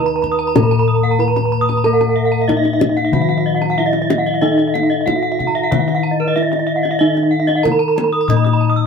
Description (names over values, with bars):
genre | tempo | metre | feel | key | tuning
Balinese gamelan | 93 BPM | 4/4 | straight | Eb pelog | A4 = 440 Hz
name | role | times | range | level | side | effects
gamelan-type bronze metallophone | melody | 0.0-8.9 s | Eb4 to Eb5 | -18 LUFS | right 2 dB | none
gamelan-type bronze metallophone | accompaniment | 0.0-8.9 s | Eb3 to Eb4 | -26 LUFS | left 1 dB | none
gamelan-type bronze metallophone | arpeggios | 0.0-8.8 s | Eb5 to Eb6 | -22 LUFS | right 4 dB | none
gamelan-type bossed gongs | bass | 0.0-8.9 s | Bb2-45c to Eb5 | -18 LUFS | left 5 dB | none
gamelan-type bronze metallophone | arpeggios | 0.1-8.8 s | Cb5-40c to Fb6 | -21 LUFS | left 2 dB | none
kendang | percussion | 0.2-8.5 s | none | -21 LUFS | left 2 dB | none
room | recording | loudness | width
moderate booth ambience, RT60 0.3 s | none | -13 LUFS | side -6 dB against mid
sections
0.0-8.9 A section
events
none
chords
none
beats
0.56 1.21 | 1.85 2.50 3.14 3.78 | 4.42 5.07 5.71 6.36 | 7.00 7.64 8.29